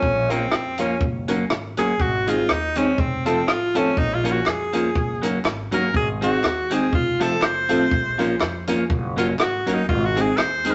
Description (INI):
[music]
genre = ska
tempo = 122 BPM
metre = 4/4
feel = swing 56% on 8ths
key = Bb minor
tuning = A4 = 441 Hz
[part]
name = edgy tenor saxophone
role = melody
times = 0.0-10.7 s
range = C4 to C5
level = -25 LUFS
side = equal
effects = none
[part]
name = upright bass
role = bass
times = 0.0-10.7 s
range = F1 to F2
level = -33 LUFS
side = equal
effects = none
[part]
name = compact cocktail drum kit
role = drums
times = 0.0-10.7 s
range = hi-hat, kick drum, rim click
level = -27 LUFS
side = equal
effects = none
[part]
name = clean electric guitar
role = accompaniment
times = 0.3-10.7 s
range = Eb3 to Db4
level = -30 LUFS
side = equal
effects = none
[part]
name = warm upright piano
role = stabs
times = 0.3-10.7 s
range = C4 to Bb4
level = -28 LUFS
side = equal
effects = none
[part]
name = group handclap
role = percussion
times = 4.5-10.5 s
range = none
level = -38 LUFS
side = equal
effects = none
[sound]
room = wet studio reverb, RT60 0.8 s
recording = nothing above 8.0 kHz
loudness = -21 LUFS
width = mono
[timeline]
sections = 0.0-10.7 A section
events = tenor saxophone solo 0.0-10.7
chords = 0.0 Bbm; 1.0 Gb; 2.0 Ab; 3.0 F; 4.0 Bbm; 5.0 Gb; 5.9 Ab; 6.9 F; 7.9 Bbm; 8.9 Gb; 9.9 Ab